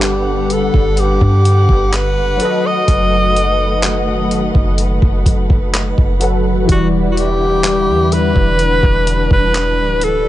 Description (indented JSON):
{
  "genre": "contemporary R&B",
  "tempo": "63 BPM",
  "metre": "4/4",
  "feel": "straight",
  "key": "unclear",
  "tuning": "A4 = 440 Hz",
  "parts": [
    { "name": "breathy alto saxophone", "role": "melody", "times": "0.0-10.3 s", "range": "F#4 to D#5", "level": "-16 LUFS", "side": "equal", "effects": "ping-pong delay" },
    { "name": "warm analog keys", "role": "accompaniment", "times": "0.0-10.3 s", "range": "E3 to F#5", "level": "-20 LUFS", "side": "left 1 dB", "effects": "chorus" },
    { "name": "dark studio string section", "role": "sustained chords", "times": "0.0-10.3 s", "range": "D3 to F#5", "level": "-22 LUFS", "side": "equal", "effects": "none" },
    { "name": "soft 808-style bass", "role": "bass", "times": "0.0-10.3 s", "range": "D1 to G2", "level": "-17 LUFS", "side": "equal", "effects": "none" },
    { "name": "dusty soul sampler-style drum kit", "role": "drums", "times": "0.0-10.2 s", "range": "handclaps, hi-hat, kick drum", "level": "-15 LUFS", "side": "equal", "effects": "none" }
  ],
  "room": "little or no reverb",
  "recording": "nothing above 10.7 kHz",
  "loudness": "-11 LUFS",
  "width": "side -14 dB against mid",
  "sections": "0.0-10.3 A section",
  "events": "none",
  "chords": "0.0 Gmaj7; 2.4 B7/F#; 6.7 Em7"
}